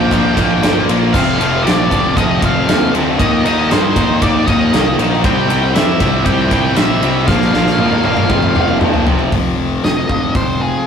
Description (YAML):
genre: quiet-loud alternative rock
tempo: 117 BPM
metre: 4/4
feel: straight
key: F mixolydian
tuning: A4 = 440 Hz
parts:
  - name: octave-fuzz lead guitar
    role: melody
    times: 0.0-10.9 s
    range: Ab4 to G5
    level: -20 LUFS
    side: equal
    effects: distortion
  - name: high-gain distorted guitar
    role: riff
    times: 0.0-10.9 s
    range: F2 to Eb4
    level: -19 LUFS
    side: left 5 dB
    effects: distortion
  - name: high-gain distorted guitar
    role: riff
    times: 0.0-9.3 s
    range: F2 to Eb4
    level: -22 LUFS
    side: right 5 dB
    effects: distortion
  - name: sludgy distorted guitar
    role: riff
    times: 0.0-9.3 s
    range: F2 to E4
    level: -21 LUFS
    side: equal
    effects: overdrive
  - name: fuzz picked electric bass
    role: bass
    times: 0.0-10.7 s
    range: E1 to G2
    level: -19 LUFS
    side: equal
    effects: overdrive
  - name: big rock drum kit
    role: drums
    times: 0.1-10.5 s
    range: crash cymbal, hi-hat, kick drum, ride cymbal, snare drum, toms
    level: -16 LUFS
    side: right 1 dB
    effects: none
  - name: electric guitar through a small old amp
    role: arpeggios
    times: 9.3-10.9 s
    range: F3 to F4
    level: -26 LUFS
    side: right 3 dB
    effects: none
room: moderate small room reverb, RT60 0.6 s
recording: rough rehearsal-room recording, warm saturation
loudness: -11 LUFS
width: side -7 dB against mid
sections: 0.0-9.3 A section; 9.3-10.9 B section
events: drum fill 7.3-9.3; lead electric guitar solo 9.3-10.9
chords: 0.0 Bb; 1.1 F; 3.2 Eb; 5.2 C; 7.3 Bb; 8.3 F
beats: 0.11 0.63 | 1.14 1.65 2.17 2.68 | 3.19 3.70 4.21 4.73 | 5.24 5.75 6.26 6.77 | 7.28 7.79 8.30 8.81 | 9.33 9.84 10.35 10.87